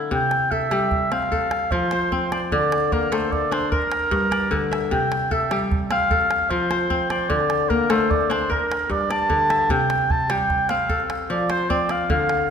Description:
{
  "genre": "west african traditional, West African string and xylophone music",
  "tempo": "100 BPM (dotted quarters)",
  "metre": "12/8",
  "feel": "straight",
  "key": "F major",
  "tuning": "A4 = 442 Hz",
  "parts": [
    { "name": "kora", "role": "arpeggios", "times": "0.0-12.5 s", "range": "G2 to E5", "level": "-23 LUFS", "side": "left 3 dB", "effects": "none" },
    { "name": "warm oboe", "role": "melody", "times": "0.1-12.5 s", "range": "Bb4 to A5", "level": "-22 LUFS", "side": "right 2 dB", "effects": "none" },
    { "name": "calabash", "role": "percussion", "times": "0.1-12.4 s", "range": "none", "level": "-28 LUFS", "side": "right 2 dB", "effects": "none" }
  ],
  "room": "wet concert hall reverb, RT60 1.9 s",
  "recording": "minimal, uncompressed stereo recording",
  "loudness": "-19 LUFS",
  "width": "side -7 dB against mid",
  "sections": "0.1-12.5 A section",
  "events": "none",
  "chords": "0.1 C; 1.3 F; 2.5 D5; 3.7 Gm; 4.9 C; 6.1 F; 7.3 D5; 8.5 Gm; 9.7 C; 10.9 F"
}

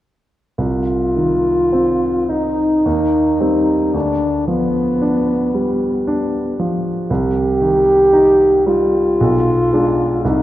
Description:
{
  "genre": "classical, romantic duo for French horn and grand piano",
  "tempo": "52-59 BPM",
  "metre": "3/4",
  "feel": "rubato",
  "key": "C minor",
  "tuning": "A4 = 440 Hz",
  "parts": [
    { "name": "warm French horn", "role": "melody", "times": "0.6-10.4 s", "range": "B3 to G4", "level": "-15 LUFS", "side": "equal", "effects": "none" },
    { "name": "warm grand piano", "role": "accompaniment", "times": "0.6-10.4 s", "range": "B1 to Eb4", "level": "-18 LUFS", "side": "equal", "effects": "none" }
  ],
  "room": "wet concert hall reverb, RT60 2.0 s",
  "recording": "dark, warm production",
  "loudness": "-13 LUFS",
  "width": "side -14 dB against mid",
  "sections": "0.6-10.4 A section",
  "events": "none",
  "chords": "0.6 Cm; 2.9 Cm/Eb; 3.9 G7/D; 7.1 Cm; 9.2 Bdim7"
}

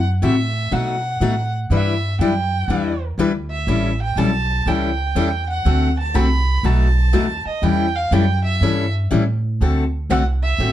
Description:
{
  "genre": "acoustic string swing (jazz manouche)",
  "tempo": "122 BPM",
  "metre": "4/4",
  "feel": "swing 66% on 8ths",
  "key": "D mixolydian",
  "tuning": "A4 = 441 Hz",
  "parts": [
    { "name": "warm violin", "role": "melody", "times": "0.0-10.7 s", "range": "D#5 to B5", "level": "-24 LUFS", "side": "right 3 dB", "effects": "plate reverb" },
    { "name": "upright bass", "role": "bass", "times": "0.0-10.7 s", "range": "A1 to B2", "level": "-19 LUFS", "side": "right 1 dB", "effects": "none" },
    { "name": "picked steel-string acoustic guitar", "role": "accompaniment", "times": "0.2-10.7 s", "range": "B2 to B4", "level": "-20 LUFS", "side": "left 4 dB", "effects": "none" }
  ],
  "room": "light reverb",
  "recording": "dark, warm production",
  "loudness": "-16 LUFS",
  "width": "side -12 dB against mid",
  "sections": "0.0-9.6 A section; 9.6-10.7 B section",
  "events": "violin solo 0.0-9.6",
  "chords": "0.0 F#m7b5; 0.7 B7; 1.7 Em7; 3.7 A7; 5.7 D7; 6.6 B7; 7.6 A7; 9.6 D7"
}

